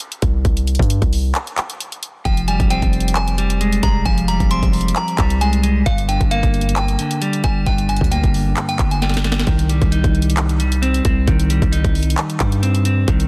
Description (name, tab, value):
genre	hip hop, trap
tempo	133 BPM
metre	4/4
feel	half-time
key	C minor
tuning	A4 = 439 Hz
part	trap drum kit	drums	0.0-13.3 s	handclaps, hi-hat, kick drum, snare drum	-22 LUFS	equal	none
part	hard-hitting 808-style bass	bass	0.2-13.3 s	F1 to G2	-21 LUFS	equal	none
part	delicate synth tine bell	melody	2.3-9.4 s	F5 to C6	-27 LUFS	equal	chorus, tape echo
part	clean electric guitar	accompaniment	2.3-13.3 s	G2 to Eb4	-23 LUFS	equal	none
room	little or no reverb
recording	dense, heavily limited modern master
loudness	-17 LUFS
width	mono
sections	0.0-13.3 A section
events	break 0.0-2.3; drum fill 9.0-9.5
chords	0.0 C5; 2.3 Fmadd9; 5.9 Gm; 9.5 Cm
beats	0.00 | 0.45 0.90 1.35 1.80 | 2.25 2.70 3.15 3.61 | 4.06 4.51 4.96 5.41 | 5.86 6.31 6.76 7.21 | 7.67 8.12 8.57 9.02 | 9.47 9.92 10.37 10.82 | 11.28 11.73 12.18 12.63 | 13.08